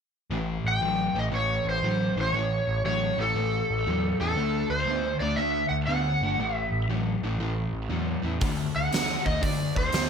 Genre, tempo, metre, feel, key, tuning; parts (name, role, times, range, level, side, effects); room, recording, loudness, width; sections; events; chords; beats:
blues rock power trio and southern rock; 118 BPM; 4/4; swing 67% on 8ths; A4 = 440 Hz
fuzz guitar; riff; 0.3-10.1 s; A2 to B3; -29 LUFS; left 1 dB; distortion
overdriven picked electric bass; bass; 0.3-10.1 s; G1 to E2; -30 LUFS; equal
overdriven slide guitar; melody; 0.7-10.1 s; A4 to G5; -27 LUFS; equal
big rock drum kit; drums; 8.4-10.1 s; hi-hat, kick drum, snare drum; -28 LUFS; equal
light reverb; -24 LUFS; side -7 dB against mid
0.3-10.1 A section
0.3 A; 4.4 D7; 6.4 A5; 8.4 D
| 0.31 0.82 1.33 1.84 | 2.35 2.85 3.36 3.87 | 4.37 4.88 5.38 5.89 | 6.40 6.90 7.41 7.91 | 8.42 8.93 9.43 9.94